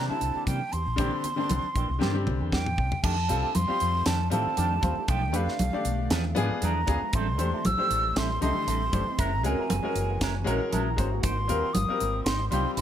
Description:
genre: electric jazz fusion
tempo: 117 BPM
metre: 4/4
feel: swing 55% on 16ths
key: C mixolydian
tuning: A4 = 440 Hz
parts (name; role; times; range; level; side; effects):
- breathy concert flute; melody; 0.0-12.8 s; F5 to E6; -30 LUFS; right 2 dB; none
- bright grand piano; accompaniment; 0.0-12.8 s; D3 to Eb5; -31 LUFS; left 4 dB; none
- electric guitar with an envelope filter; stabs; 0.0-12.8 s; Eb3 to C5; -36 LUFS; right 4 dB; lush chorus
- woody fretless electric bass; bass; 0.0-12.8 s; Gb1 to C3; -29 LUFS; equal; wide subtle chorus
- tight funk drum kit; drums; 0.2-12.8 s; crash cymbal, hi-hat, kick drum, snare drum, toms; -31 LUFS; equal; none
- congas; percussion; 0.5-12.6 s; none; -33 LUFS; right 1 dB; none
- shimmering ambient pad; sustained chords; 4.0-12.8 s; D3 to G4; -38 LUFS; equal; chorus, built-in reverb
room: moderate studio reverb, RT60 0.8 s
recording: none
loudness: -24 LUFS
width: side -10 dB against mid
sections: 0.0-3.0 A section; 3.0-12.8 B section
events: drum fill 2.0-3.0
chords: 0.0 C9; 3.0 F13; 5.1 Bm7b5; 6.1 E7b9; 7.1 Am7; 9.2 Gb9; 11.2 Abmaj7

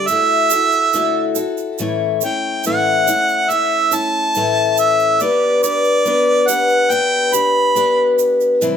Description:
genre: acoustic folk duo or small band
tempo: 70 BPM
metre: 4/4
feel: straight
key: G major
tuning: A4 = 438 Hz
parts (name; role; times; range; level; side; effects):
- warm harmonica; melody; 0.0-8.2 s; D5 to B5; -16 LUFS; right 2 dB; none
- picked steel-string acoustic guitar; accompaniment; 0.0-8.8 s; A2 to C#5; -17 LUFS; left 4 dB; none
- egg shaker; percussion; 0.1-8.8 s; none; -25 LUFS; right 11 dB; none
room: moderate studio reverb, RT60 0.9 s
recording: none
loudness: -13 LUFS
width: side -8 dB against mid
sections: 0.0-1.8 A section; 1.8-8.8 B section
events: none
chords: 0.1 Dadd9; 1.8 A; 5.2 G/B

